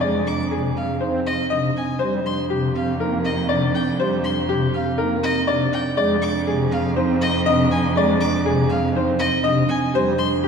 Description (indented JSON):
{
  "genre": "classical, minimalist pattern music",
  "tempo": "121 BPM",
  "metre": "4/4",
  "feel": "straight",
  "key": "F dorian",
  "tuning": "A4 = 438 Hz",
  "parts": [
    { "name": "bright baby grand piano", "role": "melody", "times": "0.0-10.5 s", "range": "G4 to Eb5", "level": "-23 LUFS", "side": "left 4 dB", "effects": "none" },
    { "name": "pipe organ, strings celeste", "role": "accompaniment", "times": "0.0-10.5 s", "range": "C3 to C4", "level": "-25 LUFS", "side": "left 2 dB", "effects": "none" },
    { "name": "marimba with medium mallets", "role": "arpeggios", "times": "0.0-10.5 s", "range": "C4 to Ab4", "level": "-24 LUFS", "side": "right 6 dB", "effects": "none" },
    { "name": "warm cello", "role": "bass", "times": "0.0-10.5 s", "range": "F2", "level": "-25 LUFS", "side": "right 2 dB", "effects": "none" },
    { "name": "rich violin", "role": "arpeggios", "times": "0.3-10.4 s", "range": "Eb5 to D6", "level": "-28 LUFS", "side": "equal", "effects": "none" }
  ],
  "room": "wet concert hall reverb, RT60 2.4 s",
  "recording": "heard from further back in the room",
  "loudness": "-18 LUFS",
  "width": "side -6 dB against mid",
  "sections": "0.0-10.5 A section",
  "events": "none",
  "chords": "0.0 Fm7; 2.0 Ebmaj9/F; 6.0 Fm7; 9.9 Ebmaj9/F (rootless)",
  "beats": "| 0.03 0.52 1.02 1.51 | 2.01 2.50 3.00 3.50 | 3.99 4.49 4.98 5.48 | 5.98 6.47 6.97 7.46 | 7.96 8.46 8.95 9.45 | 9.94 10.44"
}